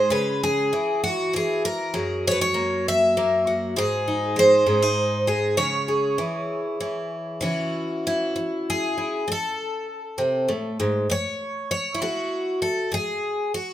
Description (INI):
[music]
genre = folk, solo fingerstyle acoustic guitar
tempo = 66 BPM (dotted quarters)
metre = 6/8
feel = rubato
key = C# minor, C# harmonic minor from 7.4 s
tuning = A4 = 441 Hz
[part]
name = picked twelve-string acoustic guitar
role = solo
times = 0.0-13.7 s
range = F#2 to E5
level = -21 LUFS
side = equal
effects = none
[sound]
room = light reverb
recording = minimal, uncompressed stereo recording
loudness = -21 LUFS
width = side -12 dB against mid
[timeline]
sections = 0.0-7.4 A section; 7.4-13.7 B section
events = none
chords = 0.1 C#m; 1.9 F#add9; 3.8 G#5; 4.7 G#; 5.6 C#m; 9.3 Ammaj7; 11.1 F#m; 12.9 N.C.